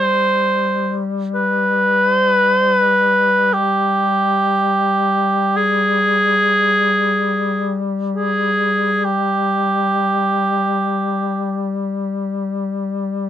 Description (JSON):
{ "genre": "caucasian folk, Caucasian lament", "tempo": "free time", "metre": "none", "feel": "none", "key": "unclear", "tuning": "A4 = 441 Hz", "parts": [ { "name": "mellow cor anglais", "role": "melody", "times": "0.0-11.9 s", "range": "G4 to C5", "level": "-15 LUFS", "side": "right 1 dB", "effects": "none" }, { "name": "mellow duduk", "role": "drone", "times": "0.0-13.3 s", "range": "G3", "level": "-21 LUFS", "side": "left 4 dB", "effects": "none" } ], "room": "moderate booth ambience, RT60 0.2 s", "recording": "none", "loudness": "-15 LUFS", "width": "side -10 dB against mid", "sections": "0.0-13.3 A section", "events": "slowing down 4.4-13.3", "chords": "none" }